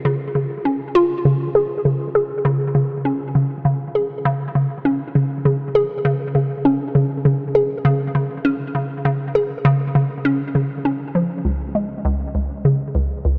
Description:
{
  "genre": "ambient",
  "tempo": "100 BPM",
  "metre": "4/4",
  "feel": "straight",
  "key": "unclear",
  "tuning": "A4 = 440 Hz",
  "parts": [
    { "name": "hollow square pluck", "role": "solo", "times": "0.1-13.4 s", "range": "C#2 to G#4", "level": "-20 LUFS", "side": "equal", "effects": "chorus, analog delay" }
  ],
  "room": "wet huge ambient reverb, RT60 7.8 s",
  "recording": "none",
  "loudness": "-20 LUFS",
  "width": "mono",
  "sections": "0.0-11.5 A section; 11.5-13.4 B section",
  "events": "none",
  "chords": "none"
}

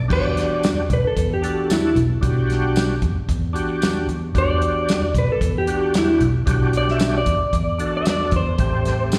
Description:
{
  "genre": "straight-eighth soul blues",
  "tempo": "113 BPM",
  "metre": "4/4",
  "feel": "straight",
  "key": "E minor",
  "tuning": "A4 = 440 Hz",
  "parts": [
    { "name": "overdriven tonewheel organ", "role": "accompaniment", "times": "0.0-9.2 s", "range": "A3 to A4", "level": "-28 LUFS", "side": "equal", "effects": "slow rotary speaker, chorus vibrato, slapback echo" },
    { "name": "vintage muted fingered electric bass", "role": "bass", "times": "0.0-9.2 s", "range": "A1 to E2", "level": "-24 LUFS", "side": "equal", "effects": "none" },
    { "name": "electric slide guitar", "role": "melody", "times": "0.1-9.2 s", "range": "E4 to E5", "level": "-24 LUFS", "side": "equal", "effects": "slapback echo, tape echo" },
    { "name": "warm soul drum kit", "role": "drums", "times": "0.1-9.2 s", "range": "crash cymbal, hi-hat, kick drum, snare drum, tambourine", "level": "-25 LUFS", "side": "equal", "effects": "none" }
  ],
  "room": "little or no reverb",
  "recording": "live gig heard through the venue's PA, recital hall reverb",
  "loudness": "-20 LUFS",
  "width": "mono",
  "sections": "0.1-9.2 A section",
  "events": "electric slide guitar solo 0.1-9.2",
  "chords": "0.1 Em7; 8.6 Am7"
}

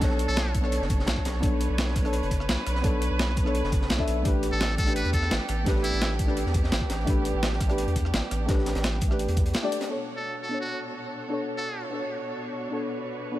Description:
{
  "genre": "liquid drum and bass",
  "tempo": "170 BPM",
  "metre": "4/4",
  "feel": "straight",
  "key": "B minor",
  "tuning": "A4 = 439 Hz",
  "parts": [
    { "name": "deep mellow chord stab", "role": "accompaniment", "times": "0.0-13.4 s", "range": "A3 to E5", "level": "-31 LUFS", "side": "left 1 dB", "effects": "chorus, ping-pong delay" },
    { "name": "muted studio string section", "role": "sustained chords", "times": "0.0-13.4 s", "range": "B2 to C#5", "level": "-35 LUFS", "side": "right 3 dB", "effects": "sidechain pumping, low-pass filter" },
    { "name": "saturated sub bass", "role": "bass", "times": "0.0-9.5 s", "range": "F#1 to E2", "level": "-28 LUFS", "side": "equal", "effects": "none" },
    { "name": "breakbeat sampler-style drum kit", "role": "drums", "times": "0.0-9.8 s", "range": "hi-hat, rim click, snare drum", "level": "-31 LUFS", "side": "equal", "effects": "none" },
    { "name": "crunchy breakbeat drum kit", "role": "drums", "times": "0.0-9.9 s", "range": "hi-hat, snare drum", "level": "-37 LUFS", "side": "equal", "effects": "high-pass filter on hats, high-pass filter on snare, high-pass filter on room" },
    { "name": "electronic kick drum", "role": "drums", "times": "0.0-9.4 s", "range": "none", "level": "-26 LUFS", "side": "equal", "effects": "none" },
    { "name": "trumpet with metal mute", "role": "melody", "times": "0.3-0.5, 4.5-6.1, 10.2-11.8 s", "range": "E4 to B4", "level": "-34 LUFS", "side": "equal", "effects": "dub echo" }
  ],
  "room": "small room ambience",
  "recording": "none",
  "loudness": "-24 LUFS",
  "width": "side -14 dB against mid",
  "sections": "0.0-9.9 A section; 9.9-13.4 B section",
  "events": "drop 0.0-9.9; band accent 9.5",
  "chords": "0.0 Bm9; 4.3 A9sus4; 9.9 Bm9"
}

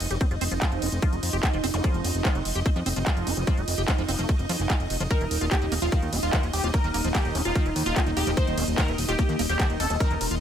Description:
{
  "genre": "psychedelic trance",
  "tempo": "147 BPM",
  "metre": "4/4",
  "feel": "straight",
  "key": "unclear",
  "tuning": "A4 = 440 Hz",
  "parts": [
    { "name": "evolving wavetable pad", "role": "sustained chords", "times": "0.0-10.4 s", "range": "Eb4 to Eb5", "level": "-33 LUFS", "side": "right 2 dB", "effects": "ensemble chorus, built-in reverb, phaser, sidechain pumping" },
    { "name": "fat analog bass", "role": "bass", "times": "0.0-10.4 s", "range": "Eb1 to F2", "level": "-28 LUFS", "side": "equal", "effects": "none" },
    { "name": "techno drum kit", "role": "drums", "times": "0.0-10.4 s", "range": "handclaps, hi-hat, ride cymbal", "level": "-31 LUFS", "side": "equal", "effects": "overdrive" },
    { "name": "deep dark ambient pad", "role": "texture", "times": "0.2-10.4 s", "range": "Bb3 to C6", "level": "-36 LUFS", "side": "left 2 dB", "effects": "chorus, built-in reverb, sidechain pumping" },
    { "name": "vowel-sweep wobble bass", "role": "second line", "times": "0.1-10.1 s", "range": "Bb3 to Eb4", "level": "-43 LUFS", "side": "left 3 dB", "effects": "none" },
    { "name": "liquid acid bass", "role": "riff", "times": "0.1-10.4 s", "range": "Eb3 to G4", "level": "-34 LUFS", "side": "right 1 dB", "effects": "chorus, auto-pan, sidechain pumping, tape echo" },
    { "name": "electronic kick drum", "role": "drums", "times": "0.2-10.1 s", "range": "none", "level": "-24 LUFS", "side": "equal", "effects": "overdrive" },
    { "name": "zap", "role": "sound effects", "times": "1.7-1.8 s", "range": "none", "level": "-37 LUFS", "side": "left 1 dB", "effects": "none" },
    { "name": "supersaw stab", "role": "melody", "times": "5.1-10.3 s", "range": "F4 to C5", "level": "-30 LUFS", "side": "right 1 dB", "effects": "phaser, sidechain pumping, ping-pong delay" }
  ],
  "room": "digital ambience",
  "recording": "none",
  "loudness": "-22 LUFS",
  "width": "side -9 dB against mid",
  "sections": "0.0-10.4 A section",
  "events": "none",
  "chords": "0.0 F5; 5.1 Eb5"
}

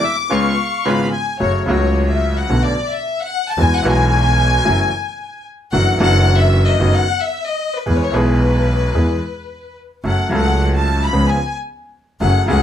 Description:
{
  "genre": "tango",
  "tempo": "111 BPM",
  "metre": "4/4",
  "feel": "rubato",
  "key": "unclear",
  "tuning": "A4 = 440 Hz",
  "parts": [
    { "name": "bandoneon", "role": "melody", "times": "0.0-1.1 s", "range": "E5 to E#5", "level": "-23 LUFS", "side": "right 4 dB", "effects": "none" },
    { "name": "rich chamber violin section", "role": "second line", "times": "0.0-12.6 s", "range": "B4 to D6", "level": "-20 LUFS", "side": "left 4 dB", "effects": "none" },
    { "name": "bright concert grand piano", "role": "accompaniment", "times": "0.3-12.6 s", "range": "G#1 to A4", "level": "-19 LUFS", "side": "equal", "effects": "none" },
    { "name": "bandoneon", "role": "stabs", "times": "0.3-1.1 s", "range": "C#4 to B4", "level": "-26 LUFS", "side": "right 5 dB", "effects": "none" },
    { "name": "clear double bass", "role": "bass", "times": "1.4-12.6 s", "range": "F#1 to E2", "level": "-16 LUFS", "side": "equal", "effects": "none" }
  ],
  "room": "light reverb",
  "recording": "close, detailed microphones",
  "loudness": "-14 LUFS",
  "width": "side -10 dB against mid",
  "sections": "0.0-1.4 A section; 1.4-12.6 B section",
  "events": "break 0.0-1.4; violin section solo 1.4-12.6",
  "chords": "0.3 C#7; 1.4 F#m; 2.5 Bm7; 3.6 Eadd9; 4.7 F#m7; 5.7 Dadd9/F#; 6.8 B7/F#; 7.9 E; 10.0 F#m; 11.1 C#7"
}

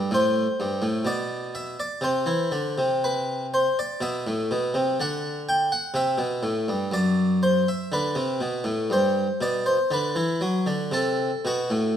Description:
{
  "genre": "classical, baroque-style suite movement for harpsichord",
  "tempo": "61 BPM",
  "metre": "4/4",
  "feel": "rubato",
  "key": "unclear",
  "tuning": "A4 = 441 Hz",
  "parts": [
    { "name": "harpsichord", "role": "solo", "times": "0.0-12.0 s", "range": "F#2 to G5", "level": "-22 LUFS", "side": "equal", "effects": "none" }
  ],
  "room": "moderate recital hall reverb, RT60 1.4 s",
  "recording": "minimal, uncompressed stereo recording",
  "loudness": "-22 LUFS",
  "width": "side -9 dB against mid",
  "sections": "0.0-12.0 A section",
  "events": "none",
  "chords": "0.1 Am7; 2.0 Cmaj9; 4.0 Am11; 5.9 Am7; 7.9 G; 9.9 D7"
}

